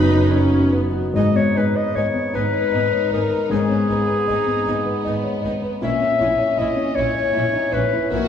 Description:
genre	cinematic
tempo	52 BPM (dotted quarters)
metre	6/8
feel	rubato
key	G# minor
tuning	A4 = 440 Hz
part	warm studio violin section	melody	0.0-8.2 s	E5 to B5	-40 LUFS	left 2 dB	none
part	large flute ensemble	second line	0.0-0.7 s	B4	-32 LUFS	left 4 dB	none
part	mellow clarinet	second line	0.0-8.3 s	G#4 to E5	-21 LUFS	left 3 dB	none
part	rich studio violin section	second line	0.0-8.3 s	B3 to B4	-30 LUFS	left 2 dB	none
part	felt-muted upright piano	accompaniment	0.0-8.3 s	F#2 to D#5	-22 LUFS	left 2 dB	none
part	rich studio viola section	accompaniment	0.0-8.2 s	B3 to E4	-27 LUFS	right 1 dB	none
part	dark French horn section	sustained chords	0.0-0.8 s	B3 to D#4	-22 LUFS	left 2 dB	none
part	dark studio cello section	bass	0.0-8.2 s	F#2 to A#2	-29 LUFS	right 2 dB	none
part	rich studio double bass section	bass	0.0-8.2 s	F#1 to A#1	-27 LUFS	right 3 dB	none
room	wet recital hall reverb, RT60 1.6 s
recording	recorded in a church or concert hall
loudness	-17 LUFS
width	side -8 dB against mid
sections	0.0-1.2 A section; 1.2-8.3 B section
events	none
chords	0.0 B/F#; 1.2 G#m; 5.8 A#dim

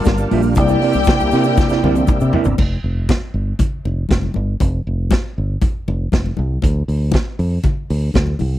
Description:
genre	disco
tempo	118 BPM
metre	4/4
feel	straight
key	unclear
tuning	A4 = 441 Hz
part	clear studio string section	second line	0.0-2.3 s	G4 to A5	-23 LUFS	left 4 dB	none
part	mellow tine electric piano	accompaniment	0.0-2.6 s	C3 to D5	-20 LUFS	left 2 dB	medium stereo tremolo
part	overdriven tonewheel organ	sustained chords	0.0-2.6 s	C3 to F4	-23 LUFS	right 1 dB	chorus vibrato, slow rotary speaker
part	egg shaker	percussion	0.0-2.6 s	none	-40 LUFS	right 21 dB	none
part	fingered electric bass	bass	0.1-8.6 s	F1 to C3	-18 LUFS	equal	none
part	vintage drum kit	drums	0.1-8.5 s	crash cymbal, hi-hat, kick drum, snare drum, toms	-18 LUFS	equal	none
part	congas	percussion	0.1-8.5 s	none	-24 LUFS	left 5 dB	none
part	mellow electric guitar	accompaniment	0.2-2.5 s	Bb3 to E5	-19 LUFS	right 8 dB	none
room	little or no reverb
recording	none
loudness	-15 LUFS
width	side -13 dB against mid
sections	0.0-2.6 A section; 2.6-8.6 B section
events	drum fill 1.6-2.6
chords	0.0 Gm7; 0.6 C9; 2.6 F5; 6.6 N.C.

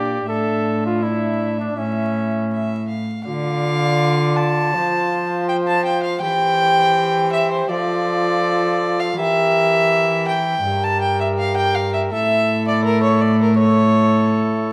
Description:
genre	classical, renaissance-style consort dance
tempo	81 BPM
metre	4/4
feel	straight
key	D minor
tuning	A4 = 441 Hz
part	warm cornet	melody	0.0-14.7 s	C#4 to D5	-29 LUFS	equal	none
part	rich violin	second line	0.0-14.7 s	Bb4 to A5	-22 LUFS	equal	none
part	clear trombone	accompaniment	0.0-14.7 s	D4 to G4	-26 LUFS	equal	none
part	rich cello	bass	0.0-14.7 s	G2 to F3	-23 LUFS	equal	none
room	wet stone room reverb, RT60 1.4 s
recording	dark, warm production, vinyl crackle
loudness	-18 LUFS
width	mono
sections	0.0-3.3 A section; 3.3-14.7 A section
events	none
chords	0.3 Asus4; 1.8 A; 3.3 Dm; 4.7 F; 6.2 C/E; 7.7 Dm/F; 9.2 Edim; 10.7 Gm; 12.1 A

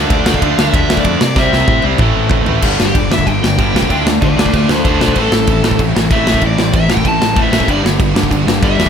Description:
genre	punk rock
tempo	190 BPM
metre	4/4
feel	straight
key	unclear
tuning	A4 = 440 Hz
part	cranked stack guitar	riff	0.0-8.9 s	G2 to F4	-20 LUFS	equal	overdrive
part	distorted electric guitar	riff	0.0-8.9 s	G2 to D4	-20 LUFS	left 14 dB	distortion
part	distorted electric guitar	riff	0.0-8.9 s	G2 to D4	-19 LUFS	right 12 dB	overdrive
part	fuzz picked electric bass	bass	0.0-8.9 s	G1 to C3	-18 LUFS	equal	overdrive
part	crunchy overdriven guitar	melody	0.1-8.9 s	F4 to A5	-18 LUFS	left 2 dB	none
part	big rock drum kit	drums	0.1-8.9 s	crash cymbal, kick drum, ride cymbal, snare drum, toms	-15 LUFS	equal	none
room	little or no reverb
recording	none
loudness	-10 LUFS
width	side -7 dB against mid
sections	0.0-2.6 A section; 2.6-8.9 B section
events	drum fill 1.4-2.6; overdriven electric guitar solo 2.6-8.9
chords	0.0 Dm; 1.4 C; 2.0 Am; 2.6 G; 3.9 Dm; 5.2 Am; 7.7 G

